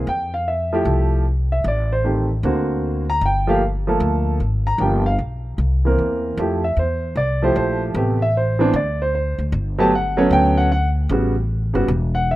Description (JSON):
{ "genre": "jazz", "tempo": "152 BPM", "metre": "4/4", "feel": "swing 64% on 8ths", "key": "unclear", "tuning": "A4 = 438 Hz", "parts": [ { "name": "warm concert grand piano", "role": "melody", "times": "0.0-12.4 s", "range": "C3 to A#5", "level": "-19 LUFS", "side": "right 1 dB", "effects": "none" }, { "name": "upright bass", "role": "bass", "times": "0.0-12.4 s", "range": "E1 to F2", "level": "-20 LUFS", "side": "equal", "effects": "none" } ], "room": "small room ambience", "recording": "rough home demo mix", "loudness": "-17 LUFS", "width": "side -16 dB against mid", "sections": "0.0-6.4 A section; 6.4-12.4 B section", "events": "none", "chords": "0.1 Fmaj9; 1.6 Am7b5; 2.4 Daug7; 3.2 Gm9; 4.8 Gm7; 5.6 C7; 6.4 Fmaj9; 8.0 Am9; 8.7 Csus2/D; 9.5 Gmaj9; 11.1 A13" }